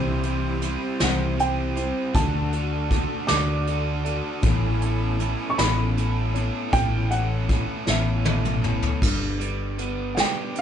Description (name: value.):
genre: folk rock and heartland rock.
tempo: 52 BPM (dotted quarters).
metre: 6/8.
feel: straight.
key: unclear.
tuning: A4 = 441 Hz.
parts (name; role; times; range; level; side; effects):
picked steel-string acoustic guitar; accompaniment; 0.0-10.6 s; A2 to D5; -30 LUFS; left 5 dB; none.
musette accordion; sustained chords; 0.0-9.0 s; A3 to C5; -36 LUFS; right 2 dB; none.
overdriven electric guitar; riff; 0.0-10.6 s; G2 to C5; -29 LUFS; right 2 dB; spring reverb.
hollow-body short-scale fingered electric bass; bass; 0.0-10.2 s; G1 to D2; -26 LUFS; equal; none.
soft brush drum kit; drums; 0.2-10.6 s; crash cymbal, hi-hat, kick drum, snare drum, toms; -25 LUFS; equal; none.
warm baby grand piano; melody; 1.0-10.6 s; E5 to D6; -28 LUFS; right 2 dB; none.
room: moderate studio reverb, RT60 0.5 s.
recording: band playing live in one room, nothing above 10.3 kHz.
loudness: -21 LUFS.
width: side -9 dB against mid.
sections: 0.0-9.0 A section; 9.0-10.6 B section.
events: drum fill 7.9-9.0; grand piano solo 9.0-10.6.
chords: 0.0 C; 2.2 D; 4.4 Aadd9; 9.0 G.